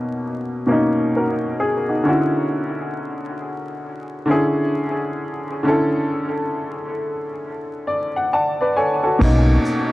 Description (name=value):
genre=lo-fi hip hop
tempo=67 BPM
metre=4/4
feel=swing 62% on 16ths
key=unclear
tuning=A4 = 442 Hz
part: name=warm upright piano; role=accompaniment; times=0.0-9.9 s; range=B2 to A5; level=-19 LUFS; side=equal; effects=cassette tape, low-pass filter, dub echo
part: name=fat analog bass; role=bass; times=9.2-9.6 s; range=B1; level=-15 LUFS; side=equal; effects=none
part: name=vintage brush drum kit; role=drums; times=9.2-9.9 s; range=crash cymbal, hi-hat, kick drum, shaker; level=-21 LUFS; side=equal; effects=none
room=moderate plate reverb, RT60 3.5 s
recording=echo-heavy mix, vinyl crackle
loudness=-18 LUFS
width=side -17 dB against mid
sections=0.0-9.2 A section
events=upright piano fill 7.4-9.2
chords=0.0 Bmaj9; 2.0 Dmaj9; 9.2 Bmaj9